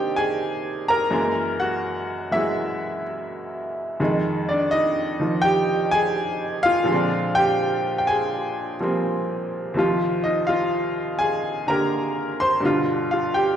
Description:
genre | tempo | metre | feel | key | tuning
solo jazz | 83 BPM | 4/4 | swing 68% on 8ths | unclear | A4 = 440 Hz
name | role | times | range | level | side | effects
bright upright piano | solo | 0.0-13.6 s | Eb2 to C6 | -20 LUFS | equal | none
room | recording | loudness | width
wet recital hall reverb, RT60 1.4 s | recorded in a church or concert hall, nothing above 10.8 kHz | -20 LUFS | side -9 dB against mid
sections
0.0-13.6 A section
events
none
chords
0.0 Cm9; 1.1 F#9; 4.0 Fm9; 6.9 Bb13; 9.8 Eb69; 12.6 G7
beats
0.40 | 1.12 1.84 2.56 3.28 | 4.00 4.72 5.44 6.16 | 6.88 7.60 8.32 9.04 | 9.75 10.47 11.19 11.91 | 12.62 13.34

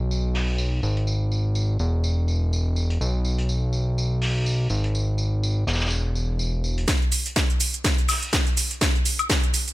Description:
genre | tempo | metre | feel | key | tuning
piano house | 124 BPM | 4/4 | swing 57% on 16ths | unclear | A4 = 440 Hz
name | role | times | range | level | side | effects
fat analog bass | bass | 0.0-6.9 s | E1 to B1 | -22 LUFS | equal | sidechain pumping
vintage drum kit | drums | 0.1-9.7 s | hi-hat, snare drum, tambourine | -32 LUFS | equal | sidechain pumping on hats, high-pass filter on hats, low-pass filter on hats, high-pass filter on snare, low-pass filter on snare, sidechain pumping on perc, high-pass filter on perc, low-pass filter on perc, high-pass filter on room, low-pass filter on room
electronic kick drum | drums | 6.9-9.4 s | none | -23 LUFS | equal | none
house drum kit | drums | 6.9-9.7 s | hi-hat, shaker, snare drum, woodblock | -23 LUFS | equal | high-pass filter on snare, low-pass filter on snare, high-pass filter on hats, low-pass filter on hats, high-pass filter on perc, low-pass filter on perc, high-pass filter on room, low-pass filter on room
room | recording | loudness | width
little or no reverb | none | -21 LUFS | side -18 dB against mid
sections
0.0-6.9 A section; 6.9-9.7 B section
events
build-up 6.9-9.7; drum fill 6.9-9.7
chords
none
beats
0.10 0.59 | 1.07 1.55 2.04 2.52 | 3.01 3.49 3.97 4.46 | 4.94 5.43 5.91 6.39 | 6.88 7.36 7.84 8.33 | 8.81 9.30

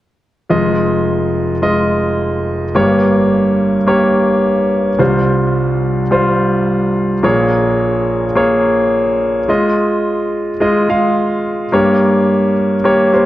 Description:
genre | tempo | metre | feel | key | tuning
pop | 107 BPM | 4/4 | straight | F minor | A4 = 440 Hz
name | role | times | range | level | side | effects
warm concert grand piano | accompaniment | 0.5-13.3 s | F1 to F5 | -12 LUFS | equal | none
room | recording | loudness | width
moderate scoring stage reverb, RT60 2.1 s | worn, warbling old tape, cassette tape, warbly pitch drift | -12 LUFS | side -14 dB against mid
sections
0.5-9.5 A section; 9.5-13.3 B section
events
none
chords
0.5 Fm7; 2.7 Gdim; 5.0 Csus4; 7.2 Bbm7; 9.5 Fm7; 11.7 Gdim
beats
| 0.50 1.06 1.62 2.19 | 2.75 3.31 3.87 4.43 | 5.00 5.56 6.12 6.68 | 7.24 7.80 8.36 8.93 | 9.49 10.05 10.61 11.17 | 11.73 12.29 12.85

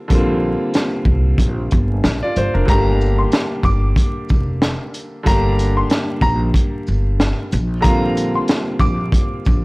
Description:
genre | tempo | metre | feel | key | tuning
hip hop, boom-bap hip-hop | 93 BPM | 4/4 | swing 56% on 16ths | G minor | A4 = 439 Hz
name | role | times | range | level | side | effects
clear concert grand piano | accompaniment | 0.0-9.6 s | D3 to D5 | -21 LUFS | equal | cassette tape, high-pass filter, low-pass filter
upright bass | bass | 0.1-9.6 s | F1 to C2 | -19 LUFS | equal | none
crunchy breakbeat drum kit | drums | 0.1-9.6 s | hi-hat, kick drum, shaker, snare drum | -17 LUFS | equal | vintage 12-bit sampler grit
warm upright piano | melody | 2.7-9.0 s | Bb5 to D6 | -23 LUFS | equal | high-pass filter, low-pass filter
room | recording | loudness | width
small room ambience | dry, gritty hardware recording, transformer saturation, vinyl crackle | -15 LUFS | side -24 dB against mid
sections
0.0-2.7 A section; 2.7-9.6 B section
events
none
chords
0.0 Bb6; 2.7 Gm; 7.5 Bb6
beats
| 0.10 0.75 1.39 2.04 | 2.68 3.33 3.97 4.62 | 5.26 5.91 6.55 7.20 | 7.84 8.49 9.13

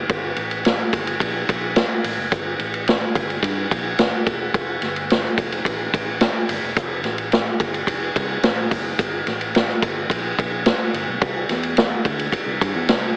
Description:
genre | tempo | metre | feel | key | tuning
uptempo 1960s-style soul | 108 BPM | 4/4 | straight | F major | A4 = 439 Hz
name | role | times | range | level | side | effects
fingered electric bass | bass | 0.0-13.1 s | E1 to G2 | -31 LUFS | equal | none
swinging big-band drum kit | drums | 0.1-13.0 s | hi-hat, kick drum, ride cymbal, snare drum | -19 LUFS | equal | none
room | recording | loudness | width
moderate large studio reverb, RT60 0.8 s | heavily compressed radio sound, AM radio sound | -19 LUFS | side -32 dB against mid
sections
0.0-13.2 A section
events
none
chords
none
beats
| 0.10 0.66 1.21 1.76 | 2.32 2.88 3.43 3.99 | 4.54 5.10 5.65 6.21 | 6.76 7.32 7.88 8.43 | 8.99 9.55 10.10 10.66 | 11.22 11.77 12.33 12.89

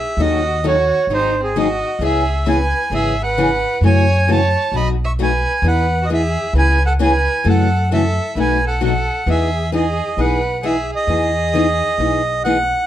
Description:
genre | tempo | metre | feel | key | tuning
acoustic string swing (jazz manouche) | 132 BPM | 4/4 | swing 63% on 8ths | E major | A4 = 438 Hz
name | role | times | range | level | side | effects
accordion | melody | 0.0-12.9 s | G#4 to C#6 | -19 LUFS | right 2 dB | none
rich violin | second line | 0.0-12.4 s | B#3 to E5 | -24 LUFS | right 3 dB | none
picked steel-string acoustic guitar | accompaniment | 0.2-12.6 s | B2 to A4 | -20 LUFS | left 3 dB | none
upright bass | bass | 0.2-12.7 s | G#1 to F#2 | -19 LUFS | equal | none
room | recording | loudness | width
light reverb | dark, warm production | -14 LUFS | side -12 dB against mid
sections
0.0-12.9 A section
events
none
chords
0.2 D#m7b5; 1.1 G#7; 2.0 C#m7; 3.8 F#m7; 4.7 B7; 5.6 Emaj7; 6.5 C#m7; 7.4 F#m7; 8.4 B7; 9.3 Emaj7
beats
| 0.18 0.64 1.09 1.54 | 2.00 2.45 2.91 3.36 | 3.82 4.27 4.72 5.18 | 5.63 6.09 6.54 7.00 | 7.45 7.90 8.36 8.81 | 9.27 9.72 10.17 10.63 | 11.08 11.54 11.99 12.45

